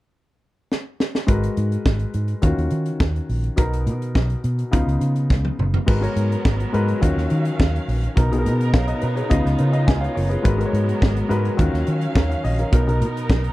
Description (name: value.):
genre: disco.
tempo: 105 BPM.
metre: 4/4.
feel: straight.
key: G# dorian.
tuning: A4 = 440 Hz.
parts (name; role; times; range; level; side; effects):
tight funk drum kit; drums; 0.7-13.5 s; crash cymbal, hi-hat, kick drum, snare drum, toms; -20 LUFS; equal; none.
warm baby grand piano; accompaniment; 1.3-13.5 s; B2 to G#5; -24 LUFS; left 2 dB; none.
vintage muted fingered electric bass; bass; 1.3-13.5 s; F#1 to D#3; -21 LUFS; equal; none.
clear studio string section; sustained chords; 5.9-13.5 s; C#3 to E#5; -29 LUFS; right 2 dB; none.
room: small room reverb.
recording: none.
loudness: -18 LUFS.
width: side -17 dB against mid.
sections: 0.0-1.3 A section; 1.3-5.9 B section; 5.9-13.5 C section.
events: drum fill 0.7-1.3, 5.3-5.9; grand piano fill 8.7-10.4.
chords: 0.0 N.C.; 1.3 G#m9; 2.4 D#m9; 3.6 Bmaj7; 4.7 C#9; 5.9 G#m9; 7.0 D#m9; 8.2 Bmaj7; 9.3 C#9; 10.4 G#m9; 11.6 D#m9; 12.7 Bmaj7.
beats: 0.14 0.71 | 1.28 1.86 2.43 3.01 | 3.58 4.16 4.73 5.30 | 5.88 6.45 7.02 7.59 | 8.16 8.74 9.31 9.88 | 10.45 11.02 11.59 12.16 | 12.73 13.30.